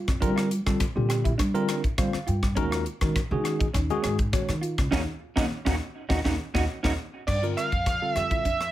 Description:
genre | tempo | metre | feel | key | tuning
electric jazz fusion | 102 BPM | 4/4 | straight | unclear | A4 = 441 Hz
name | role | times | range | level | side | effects
mellow electric guitar | stabs | 0.0-8.6 s | Db4 to G4 | -33 LUFS | right 4 dB | ensemble chorus, tape echo
upright bass | bass | 0.0-8.7 s | Db2 to G3 | -28 LUFS | equal | none
crisp fusion drum kit | drums | 0.1-8.7 s | crash cymbal, hi-hat, kick drum, rim click, snare drum | -28 LUFS | equal | none
tine electric piano | accompaniment | 0.2-8.5 s | D3 to G5 | -30 LUFS | left 1 dB | medium stereo tremolo
overdriven synth lead | melody | 7.3-8.7 s | D5 to F5 | -26 LUFS | right 3 dB | distortion
room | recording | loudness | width
light reverb | none | -24 LUFS | side -14 dB against mid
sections
0.0-7.3 A section; 7.3-8.7 B section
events
tine electric piano fill 1.7-2.6, 6.1-7.3; band accent 4.9-7.3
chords
0.0 Gm7; 2.6 Ebm7; 7.3 Gm9

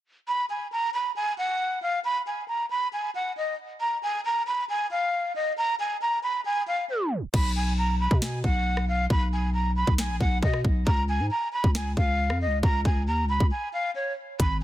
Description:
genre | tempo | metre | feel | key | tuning
hip hop, trap | 136 BPM | 4/4 | half-time | unclear | A4 = 440 Hz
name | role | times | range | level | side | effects
breathy jazz flute | melody | 0.3-14.6 s | C#5 to B5 | -27 LUFS | equal | low-pass filter, digital delay
growling 808-style bass | bass | 7.3-14.6 s | G#1 to B2 | -26 LUFS | equal | none
trap drum kit | drums | 7.3-14.5 s | crash cymbal, hi-hat, kick drum, rim click, snare drum | -25 LUFS | equal | none
room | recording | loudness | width
little or no reverb | dense, heavily limited modern master, tape stop | -24 LUFS | side -13 dB against mid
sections
0.3-7.3 A section; 7.3-14.6 B section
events
tape stop 6.9-7.3; hi-hats muted 7.3-14.4; break 13.5-14.4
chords
0.3 N.C.; 7.3 B5; 10.9 N.C.

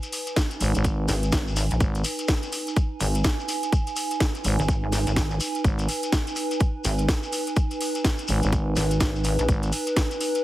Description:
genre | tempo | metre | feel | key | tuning
bass house | 125 BPM | 4/4 | swing 60% on 16ths | G# minor | A4 = 440 Hz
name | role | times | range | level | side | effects
house drum kit | drums | 0.0-10.4 s | hi-hat, snare drum | -29 LUFS | equal | overdrive
shekere | percussion | 0.0-10.4 s | none | -34 LUFS | left 3 dB | none
warbly tape-like pad | texture | 0.0-10.4 s | D#4 to G#5 | -30 LUFS | right 2 dB | chorus, built-in reverb, sidechain pumping
electronic kick drum | drums | 0.4-10.1 s | none | -23 LUFS | equal | none
growling FM bass | bass | 0.6-9.7 s | G#1 | -24 LUFS | equal | overdrive, sidechain pumping
pulsing pluck wobble bass | bass | 1.1-9.5 s | G#1 to A#1 | -24 LUFS | equal | chorus, overdrive, sidechain pumping
room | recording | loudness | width
digital ambience | heavily compressed radio sound | -22 LUFS | side -15 dB against mid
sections
0.0-10.4 A section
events
none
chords
0.0 G#m

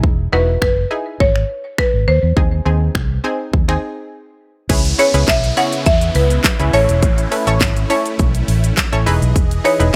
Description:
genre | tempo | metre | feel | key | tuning
dance-pop | 103 BPM | 4/4 | straight | C# minor | A4 = 440 Hz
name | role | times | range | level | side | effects
analog pluck | accompaniment | 0.0-10.0 s | B#3 to C#5 | -23 LUFS | equal | chorus, sidechain pumping
vintage muted fingered electric bass | bass | 0.0-9.9 s | E1 to E2 | -19 LUFS | equal | sidechain pumping
pop drum kit | drums | 0.0-10.0 s | crash cymbal, finger snaps, handclaps, hi-hat, kick drum, shaker, snare drum | -20 LUFS | equal | none
buzzing marimba with medium hard mallets | melody | 0.3-9.9 s | B4 to F#5 | -20 LUFS | equal | tape echo
supersaw chords | sustained chords | 4.7-10.0 s | C#3 to D#5 | -29 LUFS | equal | sidechain pumping
downlifter | sound effects | 4.7-9.4 s | none | -29 LUFS | equal | none
room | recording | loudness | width
light reverb | none | -16 LUFS | mono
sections
0.0-4.7 A section; 4.7-10.0 B section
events
break 4.1-4.7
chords
0.0 Emaj7; 2.4 G#; 4.7 C#m7; 6.7 A; 9.1 Emaj7

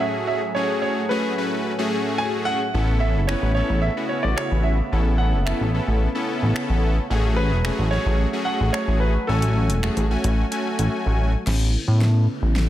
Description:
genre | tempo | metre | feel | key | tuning
dance-pop | 110 BPM | 4/4 | straight | A major | A4 = 440 Hz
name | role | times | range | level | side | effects
clear baby grand piano | melody | 0.0-10.9 s | A4 to G#5 | -27 LUFS | right 2 dB | tape echo
big bright polysynth | accompaniment | 0.0-12.7 s | A3 to G#5 | -25 LUFS | left 2 dB | low-pass filter
filtered supersaw swell | sustained chords | 0.0-12.7 s | A2 to G#4 | -31 LUFS | equal | low-pass filter
chorused synth bass | bass | 2.7-12.7 s | E1 to A2 | -20 LUFS | equal | none
deep house drum kit | drums | 3.3-12.7 s | crash cymbal, finger snaps, hi-hat, snare drum | -32 LUFS | equal | overdrive
riser | sound effects | 12.1-12.7 s | none | -44 LUFS | left 4 dB | none
room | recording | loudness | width
digital ambience | none | -19 LUFS | side -13 dB against mid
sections
0.0-11.5 A section; 11.5-12.7 B section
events
silent gap 10.9-11.5; build-up 11.5-12.7; drum fill 11.5-12.7; filter sweep 11.5-12.7; riser 12.1-12.7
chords
0.0 F#madd9/A; 2.7 Aadd9; 7.1 F#madd9; 11.5 Aadd9

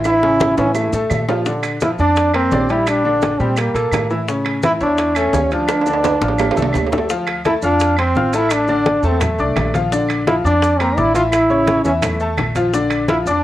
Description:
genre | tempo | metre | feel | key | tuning
latin, salsa | 170 BPM | 4/4 | straight | unclear | A4 = 440 Hz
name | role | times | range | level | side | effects
bright upright piano | accompaniment | 0.0-13.4 s | C#3 to F6 | -20 LUFS | left 2 dB | none
upright bass | bass | 0.0-13.4 s | A1 to Bb2 | -22 LUFS | right 1 dB | none
claves | percussion | 0.0-13.1 s | none | -28 LUFS | right 4 dB | none
maracas | percussion | 0.0-13.4 s | none | -36 LUFS | right 5 dB | none
bright trombone | melody | 0.1-13.4 s | A3 to F4 | -17 LUFS | equal | cassette tape
bongos | percussion | 0.1-13.4 s | none | -26 LUFS | left 5 dB | none
congas | percussion | 0.1-13.4 s | none | -25 LUFS | left 1 dB | none
timbales | percussion | 0.1-13.3 s | none | -25 LUFS | right 6 dB | none
room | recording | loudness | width
wet small room reverb, RT60 0.5 s | home recording on cassette | -14 LUFS | side -14 dB against mid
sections
0.0-7.1 A section; 7.1-13.4 A section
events
drum fill 0.1-1.5, 5.7-7.1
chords
0.1 A; 1.5 Bb; 2.9 Gmadd9/Bb; 4.3 A; 5.7 Dm7; 8.5 Asus4; 9.9 Bb; 11.3 A; 12.7 Bb

